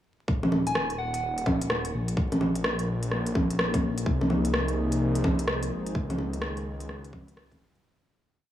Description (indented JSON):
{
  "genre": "future garage",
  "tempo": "127 BPM",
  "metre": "4/4",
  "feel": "swing 63% on 16ths",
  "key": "Eb minor",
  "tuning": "A4 = 440 Hz",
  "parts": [
    { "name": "swelling detuned saw bass", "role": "bass", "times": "0.3-7.8 s", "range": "Eb1 to Db2", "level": "-30 LUFS", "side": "equal", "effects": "sidechain pumping" },
    { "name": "electronic kick drum", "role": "drums", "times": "0.3-7.6 s", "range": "none", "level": "-28 LUFS", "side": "equal", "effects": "overdrive" },
    { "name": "organic electronic drum kit", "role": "drums", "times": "0.4-7.8 s", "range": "bongos, hi-hat, rim click", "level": "-28 LUFS", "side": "equal", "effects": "overdrive" },
    { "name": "soft struck synth lead", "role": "melody", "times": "0.7-1.5 s", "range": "Gb5 to Ab5", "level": "-33 LUFS", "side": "right 1 dB", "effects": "chorus, digital delay" },
    { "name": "warbly tape-like pad", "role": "sustained chords", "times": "2.9-7.8 s", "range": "Eb3 to Db5", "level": "-32 LUFS", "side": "left 1 dB", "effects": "chorus, built-in reverb, sidechain pumping" }
  ],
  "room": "light reverb",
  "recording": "vinyl crackle, small room ambience",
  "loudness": "-25 LUFS",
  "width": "side -12 dB against mid",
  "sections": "0.3-7.8 groove",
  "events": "fade-out 5.3-7.8",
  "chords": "0.3 Ebm; 2.2 Bbm7; 4.1 Ab/C; 6.0 Db9sus4"
}